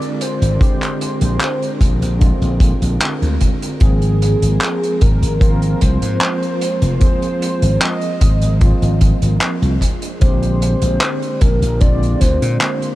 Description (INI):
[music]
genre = vaporwave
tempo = 75 BPM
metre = 4/4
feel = straight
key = Ab lydian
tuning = A4 = 441 Hz
[part]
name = warm velvety synth lead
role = melody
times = 0.0-13.0 s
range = Ab4 to Eb5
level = -24 LUFS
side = equal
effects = chorus, cassette tape, tape echo
[part]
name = overdriven tine electric piano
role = accompaniment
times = 0.0-13.0 s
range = D3 to Ab4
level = -22 LUFS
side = right 1 dB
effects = medium tremolo, wide subtle chorus, analog delay
[part]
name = soft string machine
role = sustained chords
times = 0.0-13.0 s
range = Ab3 to C5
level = -29 LUFS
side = equal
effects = ensemble chorus
[part]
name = loose indie drum kit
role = drums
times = 0.0-13.0 s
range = handclaps, hi-hat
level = -23 LUFS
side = equal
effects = none
[part]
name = slap bass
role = bass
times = 0.4-12.6 s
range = F1 to Bb2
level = -16 LUFS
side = equal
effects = none
[part]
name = kick drum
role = drums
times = 0.6-12.4 s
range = none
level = -14 LUFS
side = equal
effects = none
[sound]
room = little or no reverb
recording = none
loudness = -13 LUFS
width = side -16 dB against mid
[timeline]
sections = 0.0-13.0 A section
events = none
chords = 0.0 Bb13; 3.8 Ab69; 9.8 Bb13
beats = | 0.61 1.41 2.21 3.01 | 3.81 4.61 5.41 6.21 | 7.01 7.81 8.61 9.41 | 10.21 11.01 11.81 12.61